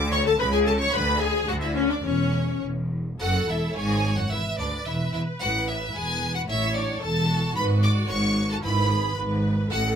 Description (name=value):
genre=quick classical-period movement for string orchestra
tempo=110 BPM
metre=2/4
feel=rubato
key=A major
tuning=A4 = 440 Hz
part: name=clear chamber violin section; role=second line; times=0.0-9.8 s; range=D4 to D6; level=-33 LUFS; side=right 2 dB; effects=none
part: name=rich studio cello section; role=bass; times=0.0-10.0 s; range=D2 to D3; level=-29 LUFS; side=equal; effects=none
part: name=rich symphonic double bass section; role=bass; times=0.0-10.0 s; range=E1 to D2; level=-27 LUFS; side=right 1 dB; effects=none
part: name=clear chamber violin section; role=melody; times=0.1-10.0 s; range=C#5 to D6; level=-28 LUFS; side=right 1 dB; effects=none
part: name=clear symphonic viola section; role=accompaniment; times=0.1-10.0 s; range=C#4 to C#5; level=-28 LUFS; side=left 4 dB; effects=none
room=light reverb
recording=minimal, uncompressed stereo recording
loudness=-22 LUFS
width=side -8 dB against mid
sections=0.0-3.2 A section; 3.2-10.0 B section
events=none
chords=0.4 Amaj9/C#; 0.9 E13/D; 2.0 C#m/E; 2.6 N.C.; 3.2 A5; 3.8 G#7sus4; 4.3 E5; 5.4 A5; 5.9 E; 6.5 A; 7.6 G#m